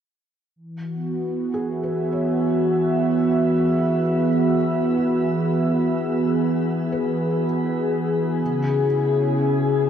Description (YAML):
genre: ambient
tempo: 61 BPM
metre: 4/4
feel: straight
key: unclear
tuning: A4 = 441 Hz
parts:
  - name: warm analog pad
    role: sustained chords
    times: 0.6-9.9 s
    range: C#3 to E5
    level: -19 LUFS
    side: equal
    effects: chorus
  - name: felt-muted upright piano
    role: arpeggios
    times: 1.5-9.9 s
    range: F#4 to C#5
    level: -34 LUFS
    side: equal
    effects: tape echo
room: wet shimmer reverb, RT60 6.4 s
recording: nothing above 10.4 kHz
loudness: -19 LUFS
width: side -8 dB against mid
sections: 0.5-9.9 A section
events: fade-in on felt piano 0.5-9.9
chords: 0.5 Eadd9; 8.4 C#m